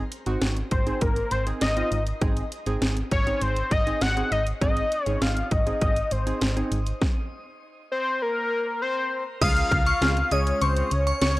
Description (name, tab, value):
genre	synth-pop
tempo	100 BPM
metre	4/4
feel	straight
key	unclear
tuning	A4 = 440 Hz
part	warm analog keys	accompaniment	0.0-10.9 s	Ab3 to Ab4	-33 LUFS	right 2 dB	chorus, shimmer reverb
part	solid FM bass	bass	0.0-11.4 s	Ab1 to Db2	-27 LUFS	equal	none
part	house drum kit	drums	0.1-11.4 s	crash cymbal, hi-hat, kick drum, snare drum	-26 LUFS	equal	overdrive
part	fat analog lead	melody	0.7-11.4 s	Bb4 to Gb5	-26 LUFS	left 2 dB	chorus, shimmer reverb, analog delay
part	glassy synth bell	second line	9.4-11.4 s	Db6 to Eb6	-28 LUFS	equal	chorus, phaser, shimmer reverb
room	light reverb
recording	dry, gritty hardware recording, cassette tape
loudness	-22 LUFS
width	side -18 dB against mid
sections	0.0-9.4 A section; 9.4-11.4 B section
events	stop 7.0-9.4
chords	0.0 Ab; 9.4 Db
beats	0.42 1.02 1.62 | 2.22 2.82 3.42 4.02 | 4.62 5.22 5.82 6.42 | 7.02 7.62 8.22 8.82 | 9.42 10.02 10.62 11.22